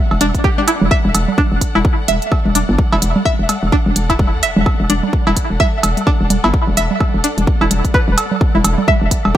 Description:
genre	minimal techno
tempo	128 BPM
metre	4/4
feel	swing 59% on 16ths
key	unclear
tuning	A4 = 440 Hz
part	warm chamber string section	texture	0.0-9.4 s	A4 to F#5	-28 LUFS	left 3 dB	sidechain pumping
part	hollow knocking FM bass	bass	0.1-9.3 s	E1 to E2	-17 LUFS	equal	sidechain pumping
part	electronic cowbell, toms and congas	percussion	0.1-9.3 s	none	-20 LUFS	right 1 dB	analog delay
part	string-like resonator pluck	riff	0.2-9.4 s	D4 to E5	-19 LUFS	right 1 dB	chorus, phaser, sidechain pumping, analog delay
part	electronic hi-hat	drums	0.2-9.2 s	none	-20 LUFS	right 1 dB	none
part	electronic kick drum	drums	0.3-9.4 s	none	-16 LUFS	equal	none
room	little or no reverb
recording	echo-heavy mix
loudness	-12 LUFS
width	side -12 dB against mid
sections	0.0-9.4 A section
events	fade-in on string section 0.0-9.4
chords	0.0 E7(no3)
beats	0.44 | 0.91 1.38 1.85 2.32 | 2.79 3.25 3.72 4.19 | 4.66 5.13 5.60 6.07 | 6.54 7.00 7.47 7.94 | 8.41 8.88 9.35

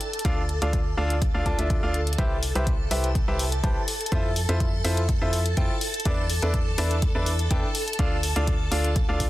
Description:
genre	piano house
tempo	124 BPM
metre	4/4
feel	straight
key	unclear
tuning	A4 = 440 Hz
part	string machine, violins	sustained chords	0.0-9.3 s	A4 to A5	-33 LUFS	equal	ensemble chorus, sidechain pumping
part	electronic hi-hat	drums	0.0-9.3 s	none	-30 LUFS	left 2 dB	none
part	bright concert grand piano	riff	0.2-9.2 s	D4 to A5	-29 LUFS	equal	sidechain pumping, digital delay
part	organ-like FM bass	bass	0.2-9.3 s	C2 to F2	-26 LUFS	equal	sidechain pumping
part	electronic kick drum	drums	0.2-9.3 s	none	-26 LUFS	equal	none
room	little or no reverb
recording	dense, heavily limited modern master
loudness	-22 LUFS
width	side -16 dB against mid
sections	0.0-9.3 A section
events	none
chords	0.0 Dm; 2.2 Cmaj7; 4.1 Fmaj7; 5.8 E7sus4; 7.7 Dm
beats	| 0.25 0.73 1.22 1.70 | 2.18 2.67 3.15 3.64 | 4.12 4.60 5.09 5.57 | 6.05 6.54 7.02 7.51 | 7.99 8.47 8.96

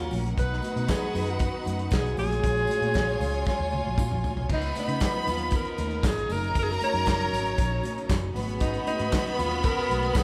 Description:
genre	disco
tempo	116 BPM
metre	4/4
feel	straight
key	unclear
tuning	A4 = 443 Hz
part	breathy alto saxophone	melody	0.0-10.2 s	D#4 to C#5	-33 LUFS	equal	none
part	rich studio violin section	second line	0.0-10.2 s	B3 to B5	-33 LUFS	equal	none
part	clear studio string section	sustained chords	0.0-10.2 s	B2 to F#4	-39 LUFS	equal	none
part	fingered electric bass	bass	0.0-10.2 s	F#1 to C#3	-33 LUFS	equal	none
part	damped 70s drum kit	drums	0.0-10.2 s	crash cymbal, handclaps, hi-hat, kick drum, snare drum, toms	-31 LUFS	equal	none
part	congas	percussion	0.1-10.2 s	none	-41 LUFS	equal	none
part	tambourine	percussion	0.1-10.2 s	none	-52 LUFS	equal	none
room	moderate large studio reverb, RT60 1.2 s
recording	band playing live in one room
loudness	-27 LUFS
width	mono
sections	0.0-4.5 A section; 4.5-10.2 B section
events	drum fill 3.5-4.5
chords	0.4 B; 2.2 A#m7; 4.5 C#9; 6.3 F#6; 8.4 G#m9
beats	| 0.37 0.88 1.40 1.92 | 2.43 2.95 3.46 3.98 | 4.50 5.01 5.53 6.04 | 6.55 7.07 7.58 8.10 | 8.61 9.12 9.64 10.15

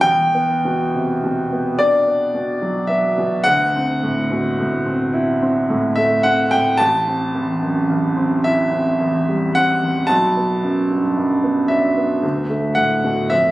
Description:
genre	classical, impressionist solo piano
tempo	55 BPM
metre	3/4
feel	rubato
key	E minor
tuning	A4 = 440 Hz
part	clear concert grand piano	solo	0.0-13.5 s	A1 to A5	-16 LUFS	equal	none
room	moderate recital hall reverb, RT60 1.3 s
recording	recorded on a phone in the room, studio reverb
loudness	-16 LUFS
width	side -16 dB against mid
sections	0.0-13.5 A section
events	none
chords	0.0 Em9; 3.5 D9; 6.8 Am7; 10.1 Bm7; 12.2 D69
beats	| 0.04 1.24 2.35 | 3.46 4.57 5.70 | 6.79 7.89 9.01 | 10.09 11.16 12.23 | 13.31

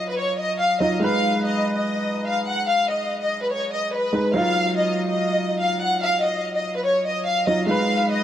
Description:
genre	hip hop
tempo	144 BPM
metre	4/4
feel	half-time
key	Eb minor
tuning	A4 = 440 Hz
part	warm studio violin section	melody	0.0-8.2 s	Cb5 to Gb5	-21 LUFS	left 1 dB	tape echo
part	warm concert grand piano	accompaniment	0.0-8.2 s	Gb3 to Cb5	-24 LUFS	right 1 dB	tape echo
room	moderate echo chamber reverb, RT60 2.0 s, studio reverb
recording	echo-heavy mix, vinyl crackle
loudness	-20 LUFS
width	side -10 dB against mid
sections	0.0-8.2 A section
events	none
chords	0.0 Ebmadd9; 1.0 Abm; 4.4 Ebmadd9; 7.7 Abm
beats	0.18 0.60 | 1.02 1.43 1.85 2.27 | 2.68 3.10 3.52 3.93 | 4.35 4.77 5.18 5.60 | 6.02 6.43 6.85 7.27 | 7.68 8.10

